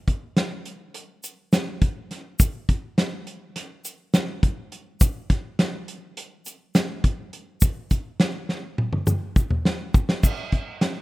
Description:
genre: progressive instrumental, progressive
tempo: 207 BPM (eighths)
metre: 9/8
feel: straight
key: none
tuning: none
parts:
  - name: loose indie drum kit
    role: drums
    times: 0.1-10.9 s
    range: crash cymbal, hi-hat, kick drum, snare drum, toms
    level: -21 LUFS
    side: equal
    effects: none
  - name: egg shaker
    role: percussion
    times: 1.2-10.5 s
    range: none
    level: -30 LUFS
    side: left 1 dB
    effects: none
room: little or no reverb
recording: rough home demo mix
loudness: -21 LUFS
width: side -20 dB against mid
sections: 0.0-10.2 A section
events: drum fill 8.5-10.2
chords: none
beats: 0.08 0.37 0.66 0.95 1.24 1.53 1.82 2.11 | 2.40 2.69 2.98 3.27 3.56 3.85 4.14 4.43 4.72 | 5.01 5.30 5.59 5.88 6.17 6.46 6.75 7.04 7.33 | 7.62 7.91 8.20 8.49 8.78 9.07 9.36 9.65 9.95 | 10.24 10.53 10.82

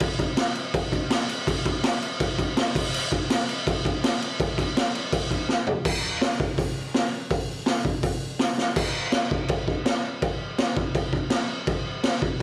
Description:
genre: punk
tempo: 165 BPM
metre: 4/4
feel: straight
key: none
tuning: none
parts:
  - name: raw garage drum kit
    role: drums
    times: 0.0-12.3 s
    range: crash cymbal, hi-hat, kick drum, snare drum, toms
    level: -22 LUFS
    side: equal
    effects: none
room: light reverb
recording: home recording on cassette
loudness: -22 LUFS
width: side -32 dB against mid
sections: 0.0-5.8 A section; 5.8-8.8 B section; 8.8-12.4 C section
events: drum fill 5.5-5.8, 8.6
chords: none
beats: | 0.01 0.38 0.74 1.10 | 1.47 1.83 2.20 2.56 | 2.92 3.29 3.65 4.02 | 4.38 4.75 5.11 5.48 | 5.84 6.21 6.57 6.94 | 7.30 7.67 8.03 8.39 | 8.76 9.12 9.49 9.85 | 10.21 10.58 10.94 11.31 | 11.67 12.04

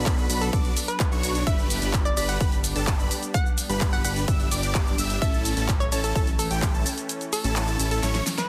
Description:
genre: EDM, festival progressive house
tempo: 128 BPM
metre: 4/4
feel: straight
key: unclear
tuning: A4 = 439 Hz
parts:
  - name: hollow square pluck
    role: melody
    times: 0.0-8.5 s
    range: A4 to F#5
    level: -34 LUFS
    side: equal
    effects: chorus, cassette tape, delay
  - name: lush unison pad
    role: sustained chords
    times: 0.0-8.5 s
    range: E3 to D4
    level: -38 LUFS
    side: equal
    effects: none
  - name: unison lead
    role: arpeggios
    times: 0.0-8.2 s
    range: G5 to E6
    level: -37 LUFS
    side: equal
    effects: lush chorus, sidechain pumping, delay
  - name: supersaw chords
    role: riff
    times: 0.0-8.2 s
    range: C#4 to E5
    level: -34 LUFS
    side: equal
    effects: phaser, sidechain pumping, delay
  - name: fat analog bass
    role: bass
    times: 0.0-8.2 s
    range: G1 to B1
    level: -31 LUFS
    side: equal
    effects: tube saturation, sidechain pumping
  - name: electronic kick drum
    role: drums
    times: 0.1-6.7 s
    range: none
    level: -26 LUFS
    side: equal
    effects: overdrive
  - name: pop drum kit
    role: drums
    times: 0.1-8.5 s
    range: cabasa, handclaps, hi-hat, snare drum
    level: -32 LUFS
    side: equal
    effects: none
room: light reverb, digital ambience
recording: dense, heavily limited modern master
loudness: -24 LUFS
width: mono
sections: 0.0-8.5 A section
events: kick drops out 7.1-8.5; drum fill 8.0-8.5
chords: 0.0 Bm; 1.5 G; 5.2 A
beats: 0.06 0.53 1.00 | 1.47 1.94 2.41 2.87 | 3.34 3.81 4.28 4.75 | 5.22 5.69 6.16 6.62 | 7.09 7.56 8.03

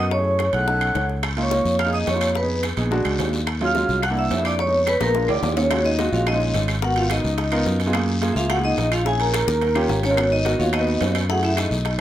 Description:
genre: Afro-Cuban jazz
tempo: 215 BPM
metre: 4/4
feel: straight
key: Eb minor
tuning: A4 = 440 Hz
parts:
  - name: vibraphone with medium hard mallets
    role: melody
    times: 0.0-12.0 s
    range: Bb4 to Bb5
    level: -23 LUFS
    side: equal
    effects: none
  - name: breathy mellow concert flute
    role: second line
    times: 0.0-12.0 s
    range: Db4 to Gb6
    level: -27 LUFS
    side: right 2 dB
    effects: none
  - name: warm concert grand piano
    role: accompaniment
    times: 0.0-12.0 s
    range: Gb3 to C#5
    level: -26 LUFS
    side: right 1 dB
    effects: none
  - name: fingered electric bass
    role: bass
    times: 0.0-12.0 s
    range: Ab1 to Gb2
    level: -24 LUFS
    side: left 1 dB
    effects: none
  - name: bongos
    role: percussion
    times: 0.1-12.0 s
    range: none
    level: -32 LUFS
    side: left 9 dB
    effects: none
  - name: claves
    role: percussion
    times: 0.4-11.7 s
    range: none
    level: -34 LUFS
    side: left 4 dB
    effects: none
  - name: timbales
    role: percussion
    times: 0.4-12.0 s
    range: none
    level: -30 LUFS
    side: right 6 dB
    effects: none
  - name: guiro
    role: percussion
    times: 1.2-12.0 s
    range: none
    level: -34 LUFS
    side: left 4 dB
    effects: none
room: moderate club reverb, RT60 0.7 s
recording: none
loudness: -18 LUFS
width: side -12 dB against mid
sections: 0.0-5.7 A section; 5.7-12.0 B section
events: grand piano fill 0.8-1.2, 11.9; drum fill 5.0-5.7, 9.3-10.2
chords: 0.1 Gbm7; 0.7 B9; 1.2 Db69; 2.4 Fm7b5; 2.9 Bb7alt; 3.5 Ebm11; 4.0 C7; 4.6 Fm7b5; 5.1 Bb7; 5.7 Ebm11; 6.8 Abm9; 7.4 Db13; 7.9 Gbmaj7; 9.1 Bbm7b5; 9.6 Eb7; 10.2 Abm9; 11.3 Gbm7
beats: | 0.11 0.39 0.67 0.95 | 1.23 1.51 1.79 2.07 | 2.35 2.63 2.91 3.19 | 3.47 3.75 4.03 4.31 | 4.59 4.87 5.15 5.43 | 5.71 5.99 6.27 6.55 | 6.83 7.10 7.38 7.66 | 7.94 8.22 8.50 8.78 | 9.06 9.34 9.62 9.90 | 10.18 10.46 10.73 11.01 | 11.29 11.57 11.85

